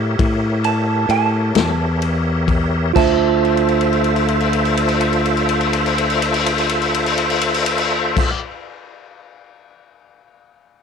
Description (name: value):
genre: slow blues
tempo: 42 BPM (dotted quarters)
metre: 12/8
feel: straight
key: D minor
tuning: A4 = 440 Hz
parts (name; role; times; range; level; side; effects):
- electric guitar through a small old amp; second line; 0.0-8.3 s; A5; -23 LUFS; right 8 dB; none
- tine electric piano; accompaniment; 0.0-8.3 s; F4 to E5; -23 LUFS; right 16 dB; none
- tonewheel organ; sustained chords; 0.0-8.3 s; F4 to E5; -20 LUFS; left 1 dB; slow rotary speaker, chorus vibrato
- modern bright fingered electric bass; bass; 0.0-8.3 s; D2 to A2; -20 LUFS; left 1 dB; none
- vintage drum kit; drums; 0.2-8.4 s; crash cymbal, kick drum, ride cymbal, snare drum; -22 LUFS; left 5 dB; none
room: light reverb, studio ambience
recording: 1960s-style stereo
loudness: -15 LUFS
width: side -6 dB against mid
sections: 0.0-3.0 A section; 3.0-8.7 B section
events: slowing down 0.0-3.0; clean electric guitar solo 0.0-3.0; drum fill 3.4-8.2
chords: 0.0 A7b9; 3.0 Dm7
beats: 0.20 1.55 | 2.96 4.40 5.85 7.29